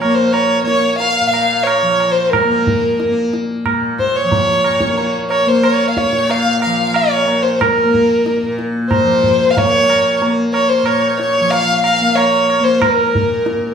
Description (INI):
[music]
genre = indian classical, Hindustani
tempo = 92 BPM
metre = 4/4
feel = straight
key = unclear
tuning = A4 = 440 Hz
[part]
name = rich violin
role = melody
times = 0.0-13.7 s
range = Bb4 to F5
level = -14 LUFS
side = equal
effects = none
[part]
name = tanpura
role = drone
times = 0.0-13.7 s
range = Bb2 to Bb3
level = -19 LUFS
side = left 2 dB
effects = none
[part]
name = tabla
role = percussion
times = 0.0-13.7 s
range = none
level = -20 LUFS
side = right 4 dB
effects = none
[sound]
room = wet recital hall reverb, RT60 1.2 s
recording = studio reverb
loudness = -12 LUFS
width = side -7 dB against mid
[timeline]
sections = 0.0-13.7 A section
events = none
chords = none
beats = 0.34 1.01 1.67 | 2.33 2.99 3.65 4.31 | 4.97 5.63 6.29 6.94 | 7.60 8.25 8.90 9.56 | 10.21 10.86 11.51 12.16 | 12.81 13.46